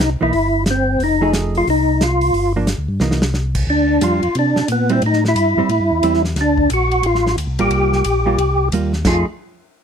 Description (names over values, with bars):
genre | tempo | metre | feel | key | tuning
soul jazz organ trio | 179 BPM | 4/4 | swing 63% on 8ths | unclear | A4 = 439 Hz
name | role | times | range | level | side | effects
percussive tonewheel organ | melody | 0.0-9.3 s | B3 to G4 | -16 LUFS | left 1 dB | slow rotary speaker, overdrive, chorus vibrato
mellow tonewheel organ | bass | 0.0-9.2 s | F1 to C3 | -20 LUFS | equal | overdrive, chorus vibrato, slow rotary speaker
warm soul drum kit | drums | 0.0-9.1 s | crash cymbal, hi-hat, kick drum, ride cymbal, snare drum | -23 LUFS | equal | none
hollow-body jazz guitar | accompaniment | 0.2-9.3 s | E3 to G#4 | -20 LUFS | right 4 dB | none
room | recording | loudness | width
little or no reverb | none | -14 LUFS | side -7 dB against mid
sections
0.0-3.7 A section; 3.7-9.0 B section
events
drum fill 3.0-3.3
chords
0.0 C; 1.0 F7#9; 2.3 Gm7; 3.0 C7#9; 3.7 Bb6; 5.0 Am7; 6.4 D7; 7.7 C7sus4; 9.0 F7#9